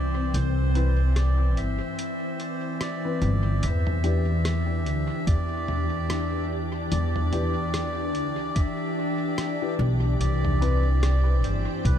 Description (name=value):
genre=ambient dub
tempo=73 BPM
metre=4/4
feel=swing 58% on 16ths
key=E minor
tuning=A4 = 440 Hz
part: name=melodica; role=melody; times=0.0-12.0 s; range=B4 to E5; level=-33 LUFS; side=right 1 dB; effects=dub echo
part: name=soft additive organ-like pad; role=sustained chords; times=0.0-12.0 s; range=E3 to D5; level=-30 LUFS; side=left 1 dB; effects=ensemble chorus, built-in reverb, vintage 12-bit sampler grit
part: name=upright bass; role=bass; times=0.0-12.0 s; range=G1 to E2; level=-24 LUFS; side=equal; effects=tube saturation
part: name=lo-fi sampler-style drum kit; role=drums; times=0.3-12.0 s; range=hi-hat, rim click, toms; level=-34 LUFS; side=equal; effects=dub echo
part: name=dark upright piano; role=stabs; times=0.8-10.8 s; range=E3 to B4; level=-35 LUFS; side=left 5 dB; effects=dub echo
part: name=electronic kick drum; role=drums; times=5.3-12.0 s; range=none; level=-23 LUFS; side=equal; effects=none
room=light reverb, studio reverb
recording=none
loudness=-23 LUFS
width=side -10 dB against mid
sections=0.0-3.6 A section; 3.6-12.0 B section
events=break 2.0-3.6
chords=0.0 C; 3.6 Em7; 10.2 C